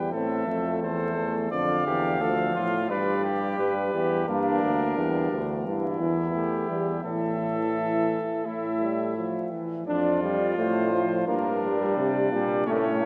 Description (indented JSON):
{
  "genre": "classical, imitative canzona for brass ensemble",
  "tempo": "86 BPM",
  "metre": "4/4",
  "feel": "straight",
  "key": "D minor from 4.3 s",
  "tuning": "A4 = 445 Hz",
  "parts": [
    { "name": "mellow cornet", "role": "melody", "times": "0.0-13.1 s", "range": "G4 to F5", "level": "-35 LUFS", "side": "equal", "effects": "none" },
    { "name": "mellow trumpet", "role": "second line", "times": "0.0-13.1 s", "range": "C#4 to D5", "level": "-33 LUFS", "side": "equal", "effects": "none" },
    { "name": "warm trombone", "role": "accompaniment", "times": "0.0-13.1 s", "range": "D3 to D4", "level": "-31 LUFS", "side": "equal", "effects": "none" },
    { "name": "warm euphonium", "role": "bass", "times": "0.0-13.1 s", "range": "D2 to C3", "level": "-31 LUFS", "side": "equal", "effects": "none" }
  ],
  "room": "wet cathedral reverb, RT60 4.6 s",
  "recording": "dark, warm production, vinyl crackle",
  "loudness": "-26 LUFS",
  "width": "mono",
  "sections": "0.0-9.9 A section; 9.9-13.1 B section",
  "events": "none",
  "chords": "0.1 Am; 1.5 Dm; 2.9 G; 4.3 Gm; 5.7 Edim; 7.0 A5; 9.9 Dm/F; 11.3 Gm"
}